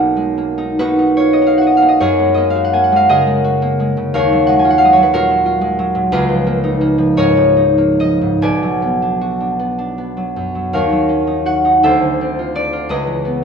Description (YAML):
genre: classical, solo harp piece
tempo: 44-62 BPM (dotted quarters)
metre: 6/8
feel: rubato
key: F# major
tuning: A4 = 440 Hz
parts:
  - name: concert harp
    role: solo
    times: 0.0-13.4 s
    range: B1 to B5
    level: -12 LUFS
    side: equal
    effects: none
room: wet recital hall reverb, RT60 1.5 s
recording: minimal, uncompressed stereo recording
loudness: -12 LUFS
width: side -6 dB against mid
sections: 0.0-2.0 A section; 2.0-13.4 B section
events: none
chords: 0.0 Bmaj7; 2.0 F#69; 4.1 D#m11; 6.1 C#13; 8.4 Bm6; 10.7 D#m9; 11.8 Dm9; 12.9 C#m9